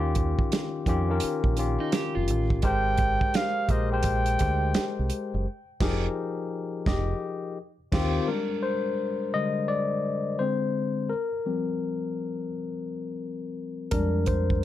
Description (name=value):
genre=R&B, neo-soul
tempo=85 BPM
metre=4/4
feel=swing 62% on 16ths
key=unclear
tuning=A4 = 437 Hz
part: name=barky tine electric piano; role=accompaniment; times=0.0-14.6 s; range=D3 to Eb5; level=-28 LUFS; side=left 4 dB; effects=none
part: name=deep dub fingered electric bass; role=bass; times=0.0-8.2, 13.9-14.6 s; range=F1 to F2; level=-27 LUFS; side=right 1 dB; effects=none
part: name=warm soul drum kit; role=drums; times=0.2-8.2, 13.9-14.6 s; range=crash cymbal, hi-hat, kick drum, snare drum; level=-28 LUFS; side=right 2 dB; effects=none
part: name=electric guitar through a small old amp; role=second line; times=1.8-2.6 s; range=Eb4 to G4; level=-32 LUFS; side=equal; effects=phaser
part: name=warm flugelhorn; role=melody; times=2.7-5.1 s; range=Eb5 to G5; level=-28 LUFS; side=right 1 dB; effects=none
room=light reverb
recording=none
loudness=-25 LUFS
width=side -13 dB against mid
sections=0.0-8.3 A section; 8.3-14.6 B section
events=band accent 5.5-8.3; tine electric piano solo 8.3-14.6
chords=0.0 Eb9; 2.6 Abmaj9; 5.5 Fm11; 7.6 Eb69; 8.3 Abmaj9#11; 10.4 Ab; 11.1 Fsus24; 13.9 Fm69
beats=0.51 1.22 1.92 | 2.63 3.34 4.04 4.75 | 5.45 6.16 6.87 7.57 | 8.28 8.98 9.69 10.39 | 11.10 11.81 12.51 13.22 | 13.92 14.63